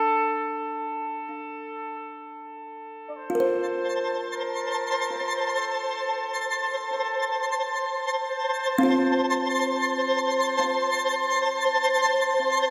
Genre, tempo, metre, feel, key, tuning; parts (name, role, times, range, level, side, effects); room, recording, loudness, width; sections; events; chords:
ambient; free time; A4 = 444 Hz
warm flugelhorn; melody; 0.0-10.3 s; A4 to D5; -34 LUFS; equal; delay
twinkling granular texture; texture; 3.7-12.7 s; C5 to A5; -26 LUFS; equal; built-in reverb
kalimba; arpeggios; 3.3-10.0 s; C4 to C5; -31 LUFS; equal; delay
wet concert hall reverb, RT60 2.0 s; -26 LUFS; mono
0.0-3.2 A section; 3.2-12.7 B section
fade-in on flugelhorn 3.2-12.7
0.0 N.C.; 3.2 Bbmaj7sus2